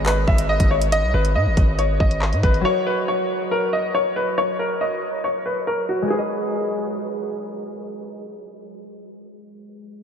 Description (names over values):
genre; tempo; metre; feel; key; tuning
hip hop, drill; 139 BPM; 4/4; half-time; G# minor; A4 = 442 Hz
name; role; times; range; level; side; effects
clear upright piano; melody; 0.0-7.4 s; F#4 to E5; -22 LUFS; left 1 dB; diffuse ambient delay
concert harp; accompaniment; 0.0-9.5 s; F#3 to D#5; -29 LUFS; equal; none
hard-hitting 808-style bass; bass; 0.0-2.6 s; G#1 to G#2; -20 LUFS; equal; none
drill drum kit; drums; 0.1-2.6 s; handclaps, hi-hat, kick drum; -21 LUFS; equal; none
room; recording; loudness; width
moderate huge ambient reverb, RT60 7.7 s; dreamy mix soaked in reverb, low-pass filter; -18 LUFS; side -8 dB against mid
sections
0.0-6.1 A section; 6.1-9.6 B section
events
none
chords
0.0 G#m; 2.6 F#; 6.1 G#m